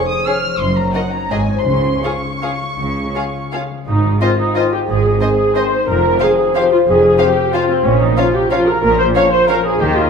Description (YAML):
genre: classical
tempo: 154-200 BPM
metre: 3/4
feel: rubato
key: Db major, Ab major from 3.9 s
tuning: A4 = 440 Hz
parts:
  - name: muted symphonic violin section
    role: melody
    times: 0.0-9.6 s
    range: Gb5 to F6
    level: -25 LUFS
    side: left 1 dB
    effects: none
  - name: concert harp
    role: arpeggios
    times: 0.0-10.1 s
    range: F2 to Db5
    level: -19 LUFS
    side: left 4 dB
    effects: none
  - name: muted symphonic violin section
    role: second line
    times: 0.3-9.6 s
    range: Ab4 to F5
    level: -23 LUFS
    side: left 1 dB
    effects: none
  - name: muted symphonic viola section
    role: accompaniment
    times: 0.3-10.1 s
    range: C4 to Db5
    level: -16 LUFS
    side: equal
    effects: none
  - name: muted studio cello section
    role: bass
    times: 0.6-10.1 s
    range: F2 to Eb3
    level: -22 LUFS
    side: right 3 dB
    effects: none
  - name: muted symphonic double bass section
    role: bass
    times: 0.6-10.1 s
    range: F1 to Eb2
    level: -23 LUFS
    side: right 3 dB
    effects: none
  - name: timpani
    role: percussion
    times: 1.7-2.2 s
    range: Db3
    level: -24 LUFS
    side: right 2 dB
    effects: none
  - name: warm French horn section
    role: sustained chords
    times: 4.2-9.6 s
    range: Eb3 to Db4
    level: -24 LUFS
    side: left 3 dB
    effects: none
room: wet recital hall reverb, RT60 1.7 s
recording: minimal, uncompressed stereo recording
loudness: -13 LUFS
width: side -6 dB against mid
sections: 0.0-3.9 A section; 3.9-10.1 B section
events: none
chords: 0.0 Db/F; 0.6 Ebm7/Gb; 1.3 Ab7; 1.7 Db; 3.9 Ab; 5.9 Fm; 7.8 Bbm